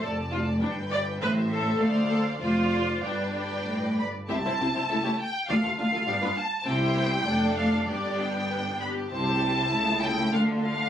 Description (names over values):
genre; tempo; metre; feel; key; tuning
quick classical-period movement for string orchestra; 94-103 BPM; 2/4; rubato; C major; A4 = 442 Hz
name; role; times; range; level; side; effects
rich studio violin section; melody; 0.0-10.9 s; D5 to B5; -30 LUFS; equal; none
warm symphonic violin section; second line; 0.0-10.9 s; C4 to E5; -34 LUFS; equal; none
rich symphonic viola section; accompaniment; 0.0-10.9 s; G3 to D5; -30 LUFS; equal; none
rich symphonic cello section; bass; 0.0-10.9 s; C2 to D3; -32 LUFS; right 1 dB; none
rich symphonic double bass section; bass; 0.0-10.9 s; F1 to D2; -30 LUFS; equal; none
room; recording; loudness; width
light reverb; recorded on a phone in the room, club reverb, compression; -24 LUFS; side -10 dB against mid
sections
0.0-4.3 A section; 4.3-10.9 B section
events
none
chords
0.0 Dm/F; 0.6 G; 1.2 Am; 1.8 Dm7; 3.0 G; 4.3 C; 4.9 A7/C#; 5.5 Dm; 6.1 G7; 6.7 C; 7.3 Dm/F; 7.9 G; 9.1 C; 9.7 A7/C#; 10.3 Dm